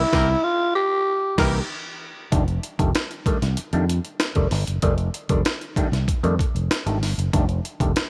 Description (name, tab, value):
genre	funk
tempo	96 BPM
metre	4/4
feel	straight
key	F mixolydian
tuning	A4 = 440 Hz
part	growling tenor saxophone	melody	0.0-1.7 s	E4 to G4	-23 LUFS	equal	none
part	overdriven clav	stabs	0.0-7.9 s	Eb3 to D#4	-30 LUFS	equal	phaser
part	fingered electric bass	bass	0.0-7.9 s	F1 to F2	-25 LUFS	equal	none
part	clear horn section	second line	0.1-1.5 s	Bb3 to Bb4	-33 LUFS	equal	none
part	breakbeat sampler-style drum kit	drums	0.1-8.1 s	crash cymbal, hi-hat, kick drum, snare drum	-27 LUFS	equal	none
room	studio reverb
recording	none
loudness	-22 LUFS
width	mono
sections	0.0-2.3 A section; 2.3-8.1 B section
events	band accent 0.0-2.3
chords	0.0 C7#9; 2.3 F13